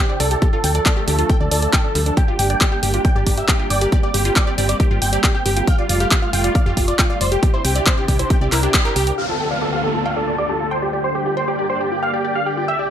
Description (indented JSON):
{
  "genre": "uplifting trance",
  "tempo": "137 BPM",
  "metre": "4/4",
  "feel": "straight",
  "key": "G dorian",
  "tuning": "A4 = 441 Hz",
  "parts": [
    { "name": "big supersaw lead", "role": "melody", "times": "0.0-12.9 s", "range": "F4 to G5", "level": "-21 LUFS", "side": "right 1 dB", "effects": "sidechain pumping, low-pass filter, digital delay" },
    { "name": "analog string pad", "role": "sustained chords", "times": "0.0-12.9 s", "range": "C2 to D5", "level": "-27 LUFS", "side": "equal", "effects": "ensemble chorus, sidechain pumping" },
    { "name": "wide unison pluck", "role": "arpeggios", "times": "0.0-12.8 s", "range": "G3 to G5", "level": "-27 LUFS", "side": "left 1 dB", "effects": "sidechain pumping, digital delay" },
    { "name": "solid FM bass", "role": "bass", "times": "0.2-9.1 s", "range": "F1 to D2", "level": "-20 LUFS", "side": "equal", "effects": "sidechain pumping" },
    { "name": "punchy analog drum machine", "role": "drums", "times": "0.2-9.2 s", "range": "handclaps, hi-hat", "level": "-21 LUFS", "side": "equal", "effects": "overdrive, sidechain pumping on hats" },
    { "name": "electronic kick drum", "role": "drums", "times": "0.4-8.8 s", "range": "none", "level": "-17 LUFS", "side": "equal", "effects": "none" },
    { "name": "downlifter", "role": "sound effects", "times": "9.2-12.7 s", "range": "none", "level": "-28 LUFS", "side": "left 2 dB", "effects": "none" }
  ],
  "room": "light reverb, digital ambience",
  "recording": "none",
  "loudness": "-15 LUFS",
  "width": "side -10 dB against mid",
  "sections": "0.0-9.2 A section; 9.2-12.9 B section",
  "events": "filter sweep on analog synth pad 0.0-9.2; band accent 8.7; filter sweep on supersaw synth 9.2-12.9",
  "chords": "0.4 Dm; 2.2 Gm; 5.7 Fadd9; 7.4 Cadd9; 9.2 Dm; 10.9 Gm"
}